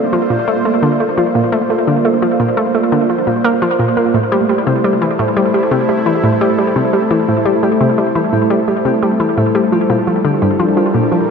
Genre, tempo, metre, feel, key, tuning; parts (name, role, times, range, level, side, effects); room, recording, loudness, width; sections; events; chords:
ambient, sequencer-driven space music; 86 BPM; 4/4; straight; A4 = 441 Hz
sweeping resonant pad; sustained chords; 0.0-11.3 s; G3 to E5; -15 LUFS; right 1 dB; chorus
concert harp; arpeggios; 0.0-11.3 s; G3 to G5; -26 LUFS; left 9 dB; auto-pan, tape echo
analog pluck; riff; 0.0-11.2 s; G2 to Bb3; -15 LUFS; equal; chorus, tape echo
wet huge ambient reverb, RT60 8.9 s; dark, warm production; -12 LUFS; side -6 dB against mid
0.0-11.3 A section
fade-in on harp 0.0-11.3
0.0 Bb; 4.1 Am7; 9.7 Gm